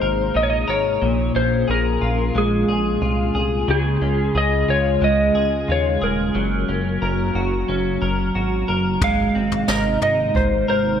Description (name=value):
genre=dream pop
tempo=90 BPM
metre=4/4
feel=straight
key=Ab major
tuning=A4 = 440 Hz
part: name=electric slide guitar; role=melody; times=0.0-11.0 s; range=Ab4 to F5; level=-22 LUFS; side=left 1 dB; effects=analog chorus, digital delay
part: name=warbly tape-like pad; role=sustained chords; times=0.0-11.0 s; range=C3 to Ab4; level=-25 LUFS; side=right 1 dB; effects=chorus, built-in reverb
part: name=clean electric guitar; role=arpeggios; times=0.0-11.0 s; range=Bb2 to Bb4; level=-23 LUFS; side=left 1 dB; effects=analog chorus, digital delay
part: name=chorused synth bass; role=bass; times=0.0-11.0 s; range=Eb1 to Eb2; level=-24 LUFS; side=equal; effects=none
part: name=jazz brush drum kit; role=drums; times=9.0-10.5 s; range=kick drum, snare drum, toms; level=-24 LUFS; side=equal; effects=none
room=moderate plate reverb, RT60 1.7 s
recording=bright 1980s-style digital production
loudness=-17 LUFS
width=side -8 dB against mid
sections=0.0-11.0 A section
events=none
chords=0.0 Abadd9; 1.0 Bbm7; 3.7 Db; 6.4 Gb; 9.0 Abadd9